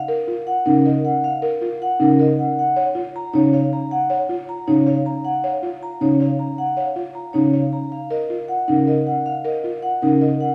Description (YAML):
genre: classical, minimalist pattern music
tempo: 314 BPM (eighths)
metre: 7/8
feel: straight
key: unclear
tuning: A4 = 440 Hz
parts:
  - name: vibraphone with medium mallets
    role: melody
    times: 0.0-10.5 s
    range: A#4 to A#5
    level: -25 LUFS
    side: equal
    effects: none
  - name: buzzing marimba with soft mallets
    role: arpeggios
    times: 0.1-10.5 s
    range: D#4 to C#5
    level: -23 LUFS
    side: equal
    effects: none
  - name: dark grand piano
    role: accompaniment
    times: 0.7-10.3 s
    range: C#3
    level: -23 LUFS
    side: equal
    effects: none
room: wet large studio reverb, RT60 1.4 s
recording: heard from further back in the room, small room ambience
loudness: -19 LUFS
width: mono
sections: 0.0-10.5 A section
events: none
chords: 0.0 D#m9